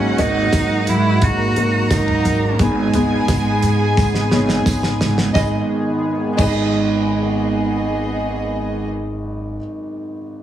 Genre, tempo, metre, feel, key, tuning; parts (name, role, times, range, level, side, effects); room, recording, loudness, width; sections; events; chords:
piano-driven pop; 87 BPM; 4/4; straight; G# minor; A4 = 440 Hz
rich cello; melody; 0.0-4.7 s; G#3 to F#4; -21 LUFS; right 2 dB
warm chamber violin section; second line; 0.0-8.9 s; B3 to A#5; -25 LUFS; right 1 dB
dark upright piano; accompaniment; 0.0-10.4 s; G#1 to D#5; -22 LUFS; left 2 dB
chorused pulse-width pad; sustained chords; 0.0-8.9 s; D#3 to G#4; -26 LUFS; right 3 dB
upright bass; bass; 0.0-9.6 s; G#1 to G#2; -20 LUFS; right 1 dB
damped 70s drum kit; drums; 0.2-6.6 s; crash cymbal, hi-hat, kick drum, snare drum, toms; -21 LUFS; right 1 dB
tambourine; percussion; 0.2-6.6 s; -37 LUFS; right 6 dB
light reverb, small room ambience; heavily compressed radio sound, multiband compression; -15 LUFS; side -11 dB against mid
0.0-5.4 A section; 5.4-8.1 B section
drum fill 4.0-5.4
0.0 D#m/G#; 2.6 G#m